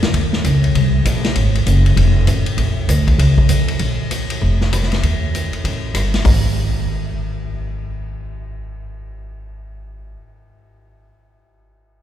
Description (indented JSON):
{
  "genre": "jazz piano trio",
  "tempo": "196 BPM",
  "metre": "4/4",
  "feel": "swing 62% on 8ths",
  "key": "unclear",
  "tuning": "A4 = 439 Hz",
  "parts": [
    { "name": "upright bass", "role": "bass", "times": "0.0-10.2 s", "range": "F1 to F2", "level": "-16 LUFS", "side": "equal", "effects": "none" },
    { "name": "vintage drum kit", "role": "drums", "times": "0.0-6.3 s", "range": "hi-hat, kick drum, ride cymbal, rim click, snare drum, toms", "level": "-20 LUFS", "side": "left 1 dB", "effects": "none" }
  ],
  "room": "wet church reverb, RT60 3.9 s",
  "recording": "recorded in a church or concert hall",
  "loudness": "-14 LUFS",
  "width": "side -11 dB against mid",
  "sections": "0.0-3.8 A section; 3.8-6.3 B section; 6.3-8.7 C section",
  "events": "none",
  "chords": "none"
}